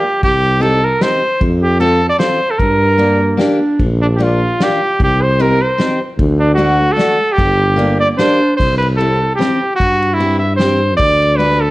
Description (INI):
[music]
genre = alpine folk, alpine dance band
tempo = 151 BPM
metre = 3/4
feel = swing 55% on 8ths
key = G minor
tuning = A4 = 440 Hz
[part]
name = clear trumpet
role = melody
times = 0.0-11.7 s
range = D4 to E5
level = -14 LUFS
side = right 1 dB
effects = slapback echo
[part]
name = picked steel-string acoustic guitar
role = accompaniment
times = 0.0-11.6 s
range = A3 to A4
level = -20 LUFS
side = left 2 dB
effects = none
[part]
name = mellow tuba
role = bass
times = 0.2-11.7 s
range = G1 to G2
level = -15 LUFS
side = equal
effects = none
[part]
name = unplugged drum kit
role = drums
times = 0.2-11.5 s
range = crash cymbal, kick drum, ride cymbal, snare drum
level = -20 LUFS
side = equal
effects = none
[part]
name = clear clarinet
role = second line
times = 3.0-3.9, 7.8-8.6 s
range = Bb3 to D4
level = -18 LUFS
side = right 1 dB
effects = none
[sound]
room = light reverb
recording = worn, warbling old tape, cassette tape, warbly pitch drift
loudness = -11 LUFS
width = side -18 dB against mid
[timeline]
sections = 0.0-8.6 A section; 8.6-11.7 B section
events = none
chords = 0.2 Cm; 1.4 F; 2.6 Gm; 3.8 Bb; 5.0 Cm; 6.2 D; 7.4 Gm; 8.6 C; 11.0 Dsus4